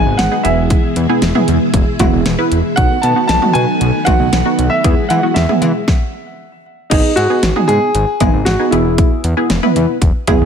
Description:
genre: synth-pop.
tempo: 116 BPM.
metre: 4/4.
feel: straight.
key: E major.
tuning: A4 = 441 Hz.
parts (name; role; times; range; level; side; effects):
dark baby grand piano; melody; 0.0-9.2 s; D#4 to A5; -17 LUFS; right 1 dB; ping-pong delay.
funky polysynth comp; accompaniment; 0.0-10.5 s; B3 to B4; -18 LUFS; right 2 dB; chorus.
ensemble organ-string; sustained chords; 0.0-5.9 s; B2 to G#4; -19 LUFS; equal; ensemble chorus.
fat analog bass; bass; 0.0-10.5 s; E1 to E3; -17 LUFS; equal; none.
pop drum kit; drums; 0.2-10.4 s; cowbell, crash cymbal, hi-hat, kick drum, snare drum, toms; -16 LUFS; equal; none.
room: light reverb.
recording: none.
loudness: -11 LUFS.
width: side -7 dB against mid.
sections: 0.0-6.9 A section; 6.9-10.5 A section.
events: stop 5.9-6.9.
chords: 0.4 E; 2.8 B7; 4.8 Eadd9; 6.9 G#m7; 8.7 E.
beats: 0.19 | 0.71 1.22 1.74 2.26 | 2.77 3.29 3.81 4.33 | 4.84 5.36 5.88 6.40 | 6.91 7.43 7.95 8.46 | 8.98 9.50 10.02.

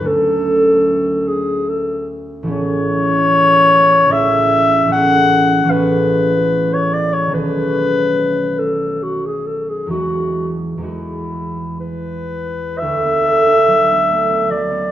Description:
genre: classical, impressionist duo for clarinet and harp.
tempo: 59-77 BPM.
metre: 3/4.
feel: rubato.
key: E major.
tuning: A4 = 444 Hz.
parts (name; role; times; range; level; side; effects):
dark clarinet; melody; 0.0-14.9 s; E4 to F#5; -15 LUFS; left 1 dB; none.
concert harp; accompaniment; 0.0-14.9 s; A1 to A4; -18 LUFS; right 2 dB; none.
room: wet recital hall reverb, RT60 1.5 s.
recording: none.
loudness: -13 LUFS.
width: side -12 dB against mid.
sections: 0.0-12.8 A section; 12.8-14.9 B section.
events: none.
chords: 0.1 Dmaj7; 2.5 Amaj9; 7.3 B13; 9.9 Emaj9; 12.8 D6.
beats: | 0.09 0.89 1.70 | 2.51 3.32 4.13 | 4.92 5.71 6.53 | 7.35 8.18 9.03 | 9.93 10.84 11.81 | 12.79 13.68 14.51.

